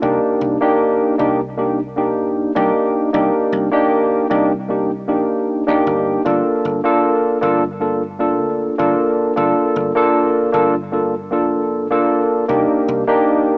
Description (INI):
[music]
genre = vaporwave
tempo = 77 BPM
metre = 4/4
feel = straight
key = G minor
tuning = A4 = 438 Hz
[part]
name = barky tine electric piano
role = accompaniment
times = 0.0-13.6 s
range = Bb3 to A4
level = -14 LUFS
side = equal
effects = overdrive, analog chorus, tape echo
[part]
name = dry thumbed slap bass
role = bass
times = 0.0-13.0 s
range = F1 to Eb2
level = -28 LUFS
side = equal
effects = tube saturation
[sound]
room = light reverb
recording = rough home demo mix, cassette tape, small speaker sound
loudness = -14 LUFS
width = side -27 dB against mid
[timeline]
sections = 0.0-13.6 A section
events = none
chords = 0.0 Cm9; 6.3 Gm9; 12.5 Cm9